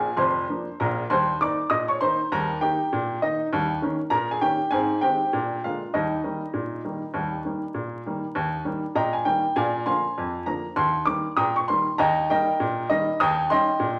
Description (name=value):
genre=ragtime piano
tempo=99 BPM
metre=2/4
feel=swing 59% on 16ths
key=Eb major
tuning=A4 = 441 Hz
part: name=clear upright piano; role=solo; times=0.0-14.0 s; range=F1 to Eb6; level=-24 LUFS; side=equal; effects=none
room=wet large studio reverb, RT60 0.9 s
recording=vinyl crackle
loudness=-25 LUFS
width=mono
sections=0.0-8.4 A section; 8.4-14.0 A section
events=none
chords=0.0 Bb7; 1.1 Eb; 3.5 Eb7; 4.7 Ab; 5.3 Bb7; 5.9 Eb; 9.6 Bb7; 10.8 Eb; 13.2 Eb7